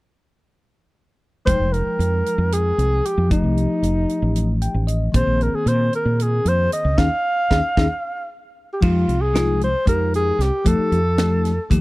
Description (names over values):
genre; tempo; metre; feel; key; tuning
electric jazz fusion; 229 BPM (eighths); 7/8; straight; F minor; A4 = 441 Hz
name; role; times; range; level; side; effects
dark alto saxophone; melody; 1.5-11.7 s; Eb4 to F5; -22 LUFS; equal; none
bell-like tine electric piano; accompaniment; 1.5-11.8 s; Eb3 to G5; -24 LUFS; left 3 dB; phaser
woody fretless electric bass; bass; 1.5-11.8 s; F1 to Bb2; -20 LUFS; equal; none
tight funk drum kit; drums; 1.5-11.8 s; crash cymbal, hi-hat, kick drum, snare drum; -22 LUFS; right 1 dB; none
room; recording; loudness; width
small room ambience; dry, close 1970s-style studio recording; -17 LUFS; side -20 dB against mid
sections
1.5-8.8 A section; 8.8-11.8 B section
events
tine electric piano fill 4.4-5.1, 8.0-8.8; band accent 7.0-8.8; drum fill 7.2-8.8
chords
1.5 Fm9; 3.3 F9; 5.1 Bb9sus4; 7.0 Eb9sus4; 8.8 Fm9; 10.7 F9